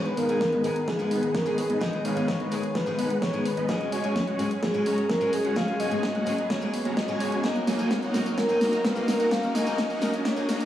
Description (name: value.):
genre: EDM, festival progressive house.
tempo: 128 BPM.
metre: 4/4.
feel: straight.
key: Eb minor.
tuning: A4 = 440 Hz.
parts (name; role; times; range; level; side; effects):
breathy flute-like synth lead; melody; 0.0-10.7 s; Ab4 to F5; -29 LUFS; equal; chorus, tape echo.
picked steel-string acoustic guitar; accompaniment; 0.0-10.5 s; Ab3 to Eb5; -34 LUFS; left 2 dB; sidechain pumping.
lush unison pad; sustained chords; 0.0-10.7 s; Eb3 to Bb4; -35 LUFS; equal; chorus, sidechain pumping.
supersaw chords; riff; 0.0-10.6 s; Ab3 to Bb5; -29 LUFS; equal; sidechain pumping, low-pass filter.
riser; sound effects; 0.1-10.7 s; none; -37 LUFS; left 1 dB; none.
big-room dance drum kit; drums; 0.1-10.7 s; hi-hat, snare drum, tambourine; -30 LUFS; equal; none.
electronic kick drum; drums; 0.4-10.3 s; none; -35 LUFS; equal; overdrive, high-pass filter on kick.
room: light reverb.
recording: played on a big sound system in a bare room, stone room reverb, high-pass filter, small room ambience.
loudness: -23 LUFS.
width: side -12 dB against mid.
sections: 0.0-10.7 A section.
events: build-up 0.0-10.7; drum fill 0.0-10.7; filter sweep on supersaw synth 0.0-10.7.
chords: 0.0 Abm; 3.7 Gbsus2; 7.4 Ebm.